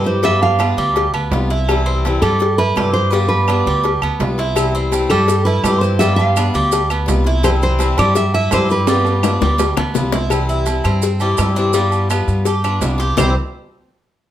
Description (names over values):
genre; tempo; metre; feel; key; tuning
latin, Cuban son and guajira; 167 BPM; 4/4; straight; C major; A4 = 437 Hz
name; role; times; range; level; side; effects
nylon-string guitar; melody; 0.0-10.1 s; A4 to F5; -19 LUFS; right 2 dB; none
picked swing-style acoustic guitar; accompaniment; 0.0-13.3 s; C3 to F4; -22 LUFS; left 4 dB; none
Cuban tres; arpeggios; 0.0-13.3 s; G3 to C5; -21 LUFS; right 2 dB; none
upright bass; bass; 0.0-13.3 s; C2 to G2; -18 LUFS; equal; none
agogo bells and timbales; percussion; 0.2-13.3 s; none; -24 LUFS; right 6 dB; none
cowbell and bongos; percussion; 0.2-13.3 s; none; -23 LUFS; left 7 dB; none
claves; percussion; 0.6-13.3 s; none; -30 LUFS; left 2 dB; none
maracas; percussion; 4.6-13.3 s; none; -31 LUFS; right 8 dB; none
room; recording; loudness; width
moderate large studio reverb, RT60 0.9 s; none; -13 LUFS; side -12 dB against mid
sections
0.0-10.3 A section; 10.3-13.2 B section; 13.2-14.3 C section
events
drum fill 8.9-10.3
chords
0.2 G7; 1.7 C; 3.1 G7; 4.6 C; 6.0 G7; 7.4 C; 8.9 G7; 10.3 C; 11.7 G7; 13.2 C